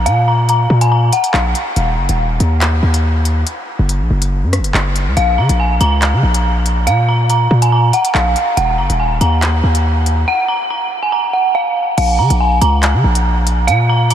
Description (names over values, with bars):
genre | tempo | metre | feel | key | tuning
hip hop, drill | 141 BPM | 4/4 | half-time | Bb minor | A4 = 444 Hz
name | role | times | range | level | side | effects
dark detuned synth bell | melody | 0.0-1.7, 5.2-14.1 s | F5 to Bb5 | -16 LUFS | right 1 dB | chorus, phaser, low-pass filter, tape echo
hard-hitting 808-style bass | bass | 0.0-14.1 s | Eb1 to Db3 | -13 LUFS | equal | none
drill drum kit | drums | 0.1-14.1 s | crash cymbal, handclaps, hi-hat, rim click | -22 LUFS | equal | none
room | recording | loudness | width
moderate huge ambient reverb, RT60 9.7 s | dreamy mix soaked in reverb | -12 LUFS | side -10 dB against mid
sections
0.0-12.0 A section; 12.0-14.1 B section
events
break 1.8-5.2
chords
0.0 Bb5; 1.8 N.C.; 5.2 Bbm; 8.6 Eb5; 10.3 N.C.; 12.0 Bbm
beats
| 0.06 0.49 0.91 1.34 | 1.76 2.19 2.62 3.04 | 3.47 3.89 4.32 4.74 | 5.17 5.59 6.02 6.45 | 6.87 7.30 7.72 8.15 | 8.57 9.00 9.42 9.85 | 10.27 10.70 11.12 11.55 | 11.98 12.40 12.83 13.25 | 13.68 14.10